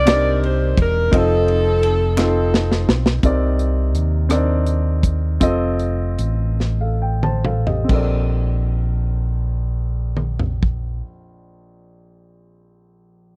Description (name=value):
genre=slow gospel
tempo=44-57 BPM (dotted quarters)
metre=6/8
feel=straight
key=Bb major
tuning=A4 = 440 Hz
part: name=warm saxophone section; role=melody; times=0.0-3.2 s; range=C4 to D5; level=-22 LUFS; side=equal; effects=none
part: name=warm grand piano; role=accompaniment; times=0.0-13.4 s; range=Bb1 to A5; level=-26 LUFS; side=equal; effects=none
part: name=fingered electric bass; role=bass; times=0.0-11.0 s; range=E1 to Eb2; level=-22 LUFS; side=equal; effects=none
part: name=modern studio drum kit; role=drums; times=0.1-10.8 s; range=crash cymbal, hi-hat, kick drum, ride cymbal, rim click, snare drum, toms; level=-21 LUFS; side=equal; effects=none
part: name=group handclap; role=percussion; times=0.1-2.5 s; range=none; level=-33 LUFS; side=equal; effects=none
room=small room reverb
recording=dry, close 1970s-style studio recording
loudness=-19 LUFS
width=mono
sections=0.0-3.2 A section; 3.2-7.9 B section; 7.9-13.4 C section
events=drum fill 2.2-3.2, 6.6-7.9; slowing down 3.2-7.9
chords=0.0 Cm9; 1.1 F7; 3.2 Cm9; 5.4 F7; 7.9 Bbmaj9